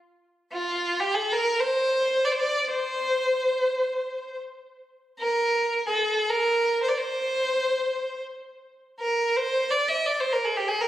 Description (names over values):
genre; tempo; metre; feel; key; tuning
arabic; free time; none; none; unclear; A4 = 440 Hz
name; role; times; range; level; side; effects
clear violin; solo; 0.5-10.9 s; F4 to E5-49c; -23 LUFS; equal; none
room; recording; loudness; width
wet concert hall reverb, RT60 1.9 s; recorded on a phone in the room, club reverb; -23 LUFS; side -13 dB against mid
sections
0.0-10.9 A section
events
none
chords
none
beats
free time